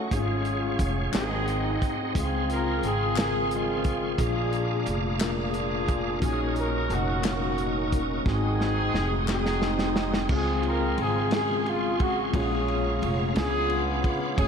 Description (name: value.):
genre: slow gospel.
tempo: 59 BPM (dotted quarters).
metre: 6/8.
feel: straight.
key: Db major.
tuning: A4 = 440 Hz.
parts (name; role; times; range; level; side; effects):
warm horn section; melody; 0.0-14.5 s; Ab3 to Bb4; -28 LUFS; equal; ping-pong delay.
mellow tine electric piano; accompaniment; 0.0-14.5 s; Ab2 to Ab5; -31 LUFS; left 3 dB; medium stereo tremolo.
bright tonewheel organ; sustained chords; 0.0-14.5 s; A3 to Eb6; -34 LUFS; right 3 dB; fast rotary speaker, chorus vibrato.
upright bass; bass; 0.1-14.5 s; F1 to Db2; -30 LUFS; equal; none.
warm soul drum kit; drums; 0.1-14.5 s; crash cymbal, hi-hat, kick drum, ride cymbal, snare drum; -31 LUFS; right 1 dB; none.
group handclap; percussion; 1.1-9.6 s; none; -42 LUFS; left 10 dB; none.
room: moderate cathedral reverb, RT60 6.0 s.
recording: dreamy mix soaked in reverb.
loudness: -24 LUFS.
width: side -6 dB against mid.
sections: 0.0-10.3 A section; 10.3-14.5 A section.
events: drum fill 8.3-10.3.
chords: 0.1 Db/Ab; 1.1 Ab7; 2.1 Dbmaj7; 4.2 Bb7; 6.2 Ebm7; 8.3 Ab7; 10.3 Dbmaj7; 12.3 Bbm7; 13.4 Db7b9.